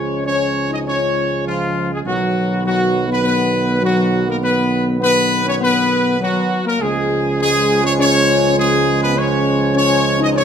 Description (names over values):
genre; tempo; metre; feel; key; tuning
classical; 101 BPM; 4/4; straight; unclear; A4 = 440 Hz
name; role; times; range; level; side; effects
bright trumpet section; melody; 0.0-10.4 s; E#4 to D#5; -18 LUFS; equal; none
mellow French horn section; sustained chords; 0.0-10.4 s; E#3 to D#4; -20 LUFS; left 4 dB; none
warm trombone section; sustained chords; 0.0-10.4 s; D#3 to B3; -24 LUFS; right 3 dB; none
mellow tuba; bass; 0.0-10.4 s; B1 to C#2; -21 LUFS; right 4 dB; none
room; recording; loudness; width
wet recital hall reverb, RT60 1.8 s; minimal, uncompressed stereo recording; -14 LUFS; side -8 dB against mid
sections
0.0-10.4 A section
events
none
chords
0.0 C#; 2.1 B; 6.8 C#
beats
0.26 0.86 1.46 | 2.06 2.65 3.24 3.83 | 4.42 5.01 5.60 6.20 | 6.80 7.39 7.98 8.57 | 9.17 9.76 10.36